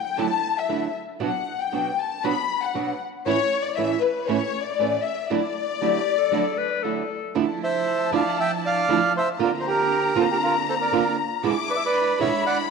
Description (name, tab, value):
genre	tango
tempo	117 BPM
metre	4/4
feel	rubato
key	D major, D minor from 7.4 s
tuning	A4 = 440 Hz
part	warm studio violin section	second line	0.0-12.7 s	B4 to D6	-25 LUFS	left 9 dB	none
part	flamenco guitar	accompaniment	0.2-12.3 s	E2 to F#4	-27 LUFS	right 9 dB	none
part	rich studio string section	stabs	0.2-12.7 s	D3 to E4	-32 LUFS	right 9 dB	none
part	bright clarinet	second line	5.8-7.3 s	G4 to B4	-30 LUFS	left 10 dB	none
part	bandoneon	melody	7.6-12.6 s	F4 to G5	-22 LUFS	right 3 dB	none
room	wet plate reverb, RT60 2.3 s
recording	1960s-style stereo with parts hard left and right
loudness	-21 LUFS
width	side -5 dB against mid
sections	0.0-7.4 A section; 7.4-12.7 B section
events	violin section solo 0.0-7.4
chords	0.0 Dadd9; 1.2 Bm; 3.3 A; 5.3 Dadd9; 7.4 Dmadd9; 9.4 Bbadd9/D; 11.4 E7